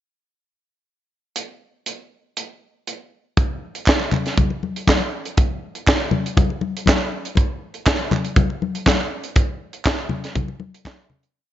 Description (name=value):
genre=disco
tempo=120 BPM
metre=4/4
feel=straight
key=none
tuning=none
part: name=tight funk drum kit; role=drums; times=1.4-11.3 s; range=handclaps, hi-hat, kick drum, snare drum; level=-19 LUFS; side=right 1 dB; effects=none
part: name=congas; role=percussion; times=3.4-11.2 s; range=none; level=-23 LUFS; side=left 5 dB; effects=none
part: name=group handclap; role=percussion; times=3.9-11.0 s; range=none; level=-30 LUFS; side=right 5 dB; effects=none
room=light reverb, studio ambience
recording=nothing above 7.6 kHz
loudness=-19 LUFS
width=side -12 dB against mid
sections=1.4-3.4 pickup bar; 3.4-11.3 breakdown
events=fade-out 9.4-11.3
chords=none